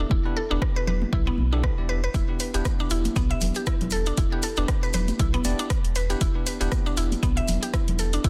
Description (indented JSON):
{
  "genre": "afro house",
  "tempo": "118 BPM",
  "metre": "4/4",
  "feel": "swing 56% on 16ths",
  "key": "E minor",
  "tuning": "A4 = 440 Hz",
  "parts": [
    { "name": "mallet-like synth pluck", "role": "arpeggios", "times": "0.0-8.3 s", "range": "B3 to E5", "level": "-32 LUFS", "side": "equal", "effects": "chorus, sidechain pumping, tape echo" },
    { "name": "bell-like tine electric piano", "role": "stabs", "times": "0.0-8.3 s", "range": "B3 to D5", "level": "-36 LUFS", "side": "equal", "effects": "sidechain pumping, tape echo" },
    { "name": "warm sub bass", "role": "bass", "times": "0.0-8.3 s", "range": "E1 to B1", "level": "-28 LUFS", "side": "equal", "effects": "sidechain pumping" },
    { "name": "electronic kick drum", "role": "drums", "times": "0.1-8.3 s", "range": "none", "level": "-28 LUFS", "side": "equal", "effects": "overdrive" },
    { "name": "congas", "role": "percussion", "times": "0.1-8.3 s", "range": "none", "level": "-35 LUFS", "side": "equal", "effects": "none" },
    { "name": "deep house drum kit", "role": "drums", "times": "0.6-8.3 s", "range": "hi-hat, rim click", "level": "-36 LUFS", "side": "equal", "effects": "overdrive" },
    { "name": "maracas", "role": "percussion", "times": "2.1-8.3 s", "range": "none", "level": "-41 LUFS", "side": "equal", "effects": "none" }
  ],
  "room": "little or no reverb",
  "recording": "dense, heavily limited modern master",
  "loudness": "-25 LUFS",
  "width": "mono",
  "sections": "0.0-8.3 A section",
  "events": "none",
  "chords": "0.0 Em7",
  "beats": "| 0.11 0.62 1.13 1.64 | 2.14 2.65 3.16 3.67 | 4.18 4.69 5.20 5.70 | 6.21 6.72 7.23 7.74 | 8.25"
}